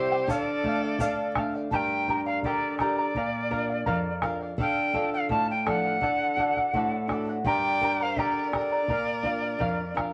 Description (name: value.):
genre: andean folk, Andean ensemble.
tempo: 84 BPM.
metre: 2/4.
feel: straight.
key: D minor.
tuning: A4 = 440 Hz.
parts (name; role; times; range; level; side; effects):
bright quena; melody; 0.0-9.9 s; C5 to A5; -31 LUFS; equal; none.
clear violin; second line; 0.0-1.4, 7.5-9.9 s; G4 to D5; -40 LUFS; equal; none.
charango; accompaniment; 0.0-10.1 s; E4 to Bb5; -32 LUFS; equal; none.
nylon-string guitar; accompaniment; 0.0-10.1 s; F2 to Bb4; -33 LUFS; equal; none.
bombo; percussion; 0.3-10.1 s; none; -36 LUFS; equal; none.
egg shaker; percussion; 0.3-1.2 s; none; -50 LUFS; equal; none.
room: moderate studio reverb, RT60 0.9 s.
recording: vinyl crackle.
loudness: -27 LUFS.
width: mono.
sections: 0.0-1.7 A section; 1.7-10.1 B section.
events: none.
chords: 0.3 Dm; 1.7 Gm; 3.2 Bb; 4.6 Dm; 6.0 D; 7.5 Gm; 8.9 Bb.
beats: | 0.29 1.00 | 1.72 2.44 | 3.15 3.87 | 4.59 5.31 | 6.02 6.74 | 7.46 8.17 | 8.89 9.61.